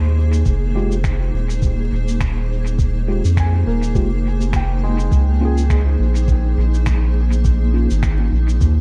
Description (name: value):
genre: ambient dub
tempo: 103 BPM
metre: 4/4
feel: swing 58% on 16ths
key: F minor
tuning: A4 = 439 Hz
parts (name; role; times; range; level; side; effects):
- granular cloud pad; sustained chords; 0.0-8.8 s; Bb3 to C5; -28 LUFS; equal; built-in reverb
- felt-muted upright piano; arpeggios; 0.0-8.8 s; Ab3 to Ab5; -34 LUFS; equal; dub echo
- soft dub sub bass; bass; 0.0-8.8 s; Eb1 to F2; -19 LUFS; equal; none
- electronic shaker and finger snaps; drums; 0.3-8.7 s; none; -36 LUFS; equal; dub echo
- electronic kick drum; drums; 0.5-8.7 s; none; -21 LUFS; equal; none
- mellow tine electric piano; stabs; 0.8-7.9 s; Ab3 to G4; -29 LUFS; equal; dub echo
room: little or no reverb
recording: dark, warm production, vinyl crackle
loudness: -18 LUFS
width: mono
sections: 0.0-8.8 A section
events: none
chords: 0.5 Fmadd9; 5.1 Db5